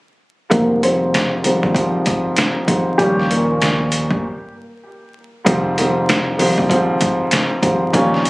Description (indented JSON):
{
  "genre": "hip hop, boom-bap hip-hop",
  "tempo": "97 BPM",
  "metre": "4/4",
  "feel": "swing 62% on 16ths",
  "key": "F minor",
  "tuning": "A4 = 440 Hz",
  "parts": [
    { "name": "dark upright piano", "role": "melody", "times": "0.5-3.8 s", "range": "G3 to C5", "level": "-19 LUFS", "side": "equal", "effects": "high-pass filter, low-pass filter, tape echo" },
    { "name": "dark grand piano", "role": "accompaniment", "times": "0.5-8.3 s", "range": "Ab2 to Db4", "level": "-17 LUFS", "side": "equal", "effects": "cassette tape, high-pass filter, low-pass filter" },
    { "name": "upright bass", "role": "bass", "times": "0.5-8.3 s", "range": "F1 to Eb2", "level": "-26 LUFS", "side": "equal", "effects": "none" },
    { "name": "trip hop sampler-style drum kit", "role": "drums", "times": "0.5-8.3 s", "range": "hi-hat, kick drum, snare drum", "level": "-20 LUFS", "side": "equal", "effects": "overdrive" }
  ],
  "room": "light reverb, small room ambience",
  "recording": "recorded on a phone in the room, club reverb, vinyl crackle, compression",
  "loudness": "-14 LUFS",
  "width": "side -22 dB against mid",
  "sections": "0.5-5.5 A section; 5.5-8.3 B section",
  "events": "filter sweep 0.5-5.5; break 4.2-5.5",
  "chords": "0.5 Fm7; 3.0 Eb7; 4.2 N.C.; 5.5 Fm7"
}